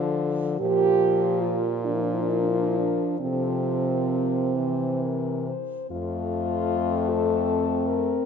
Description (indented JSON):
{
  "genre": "classical, lyrical piece for horn quartet",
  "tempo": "43-52 BPM (dotted quarters)",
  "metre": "6/8",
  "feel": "rubato",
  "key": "F major",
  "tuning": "A4 = 440 Hz",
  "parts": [
    { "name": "warm French horn", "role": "melody", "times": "0.0-8.3 s", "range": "F4 to C5", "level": "-29 LUFS", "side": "left 12 dB", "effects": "none" },
    { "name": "warm French horn", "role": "accompaniment", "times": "0.0-8.2 s", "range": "E3 to A3", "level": "-29 LUFS", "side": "left 6 dB", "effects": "none" },
    { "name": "warm French horn", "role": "bass", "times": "0.0-8.2 s", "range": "F2 to D3", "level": "-30 LUFS", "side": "right 1 dB", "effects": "none" },
    { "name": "mellow French horn", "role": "second line", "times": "0.6-8.3 s", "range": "C4 to G4", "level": "-26 LUFS", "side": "right 6 dB", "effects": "none" }
  ],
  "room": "moderate scoring stage reverb, RT60 1.9 s",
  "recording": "none",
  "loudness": "-22 LUFS",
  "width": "side -6 dB against mid",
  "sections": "0.0-5.9 A section; 5.9-8.3 B section",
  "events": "none",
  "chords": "0.0 Dm; 0.6 Bb5; 3.2 F/C; 4.6 C; 5.9 F"
}